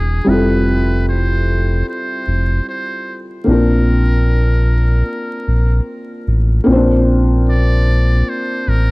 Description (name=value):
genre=lo-fi hip hop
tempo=75 BPM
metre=4/4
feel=swing 56% on 16ths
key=Bb lydian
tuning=A4 = 440 Hz
part: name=trumpet with metal mute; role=melody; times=0.0-8.9 s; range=Ab4 to D5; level=-24 LUFS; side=right 1 dB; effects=low-pass filter
part: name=felt-muted upright piano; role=accompaniment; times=0.0-8.9 s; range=G3 to C5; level=-18 LUFS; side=left 1 dB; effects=low-pass filter
part: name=sub bass with octave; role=bass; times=0.0-8.9 s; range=E1 to Bb1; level=-14 LUFS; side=equal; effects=none
room=small room ambience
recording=dark, warm production, vinyl crackle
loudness=-13 LUFS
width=side -23 dB against mid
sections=0.0-6.7 A section; 6.7-8.9 B section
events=none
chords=0.3 Fmaj9; 3.5 Bbmaj9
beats=| 0.27 1.07 1.87 2.67 | 3.47 4.27 5.07 5.87 | 6.67 7.47 8.27